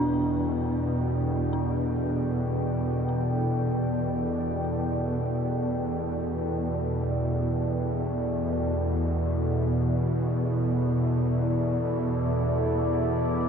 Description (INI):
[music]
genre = dark ambient drone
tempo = free time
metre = none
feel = none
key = unclear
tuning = A4 = 438 Hz
[part]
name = deep dark ambient pad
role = sustained chords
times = 0.0-13.5 s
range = E4 to G5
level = -31 LUFS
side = equal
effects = chorus, built-in reverb
[part]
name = dark detuned synth bell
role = arpeggios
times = 0.0-8.8 s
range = D4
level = -32 LUFS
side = equal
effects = chorus, ping-pong delay
[part]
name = bowed-like drone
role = drone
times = 0.0-13.5 s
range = E2 to B2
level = -26 LUFS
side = equal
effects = built-in reverb
[sound]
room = wet huge ambient reverb, RT60 7.8 s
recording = none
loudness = -24 LUFS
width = side -6 dB against mid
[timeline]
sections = 0.0-13.5 A section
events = fade-in on ambient pad 0.0-13.5; fade-out on synth bell 0.0-13.5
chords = 0.0 Em7; 8.8 Dadd9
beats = free time